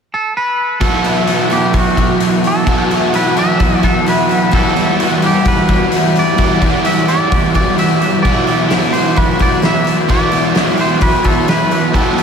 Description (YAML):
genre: rock, shoegaze and dream pop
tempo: 129 BPM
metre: 4/4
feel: straight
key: unclear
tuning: A4 = 436 Hz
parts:
  - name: twangy electric guitar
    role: melody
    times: 0.1-12.2 s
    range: F#4 to E5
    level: -17 LUFS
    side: right 1 dB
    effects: wide subtle chorus, ping-pong delay
  - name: dark analog pad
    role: sustained chords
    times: 0.8-12.2 s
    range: E3 to F#5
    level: -21 LUFS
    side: left 2 dB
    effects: wide subtle chorus
  - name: picked twelve-string acoustic guitar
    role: arpeggios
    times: 0.8-12.2 s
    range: E4 to G4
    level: -22 LUFS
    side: left 6 dB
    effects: lush chorus, ping-pong delay
  - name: overdriven semi-hollow guitar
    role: riff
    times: 0.8-12.2 s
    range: B2 to E4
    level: -18 LUFS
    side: left 6 dB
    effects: ensemble chorus
  - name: overdriven semi-hollow guitar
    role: riff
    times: 0.8-12.2 s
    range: E2 to G4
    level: -17 LUFS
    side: right 7 dB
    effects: reverse reverb
  - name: loose indie drum kit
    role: drums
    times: 0.8-12.2 s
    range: hi-hat, kick drum, snare drum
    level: -18 LUFS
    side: equal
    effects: none
room: wet huge ambient reverb, RT60 8.0 s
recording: dreamy mix soaked in reverb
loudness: -11 LUFS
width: side -6 dB against mid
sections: 0.8-12.2 A section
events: none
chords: 0.0 N.C.; 0.8 Bsus4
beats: 0.35 | 0.81 1.28 1.75 2.21 | 2.68 3.14 3.61 4.07 | 4.54 5.00 5.46 5.93 | 6.39 6.86 7.32 7.78 | 8.24 8.71 9.17 9.63 | 10.10 10.56 11.02 11.48 | 11.94